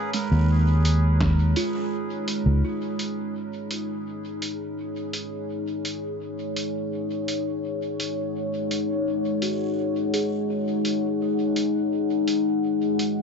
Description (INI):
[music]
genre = ambient dub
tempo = 84 BPM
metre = 4/4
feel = straight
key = unclear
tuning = A4 = 440 Hz
[part]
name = deep dark ambient pad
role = sustained chords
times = 0.0-13.2 s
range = G#3 to F#5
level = -25 LUFS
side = left 2 dB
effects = chorus, built-in reverb
[part]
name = buzzing kalimba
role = arpeggios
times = 0.1-2.4, 9.4-12.2 s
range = G#3 to G#4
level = -34 LUFS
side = right 6 dB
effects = dub echo
[part]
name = lo-fi sampler-style drum kit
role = drums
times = 0.1-13.1 s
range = hi-hat, snare drum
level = -31 LUFS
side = right 1 dB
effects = overdrive, dub echo
[part]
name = fingered electric bass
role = bass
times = 0.3-2.6 s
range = C#2 to D#2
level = -18 LUFS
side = equal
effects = none
[part]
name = electronic kick drum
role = drums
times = 1.2-1.4 s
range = none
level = -28 LUFS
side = equal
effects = none
[sound]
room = light reverb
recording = echo-heavy mix, nothing above 7.8 kHz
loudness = -23 LUFS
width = side -5 dB against mid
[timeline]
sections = 0.0-2.6 A section; 2.6-13.2 B section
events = none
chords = 0.0 A#m7 (rootless); 2.6 G#5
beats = 0.49 1.21 1.92 | 2.63 3.35 4.06 4.78 | 5.49 6.21 6.92 7.63 | 8.35 9.06 9.78 10.49 | 11.21 11.92 12.63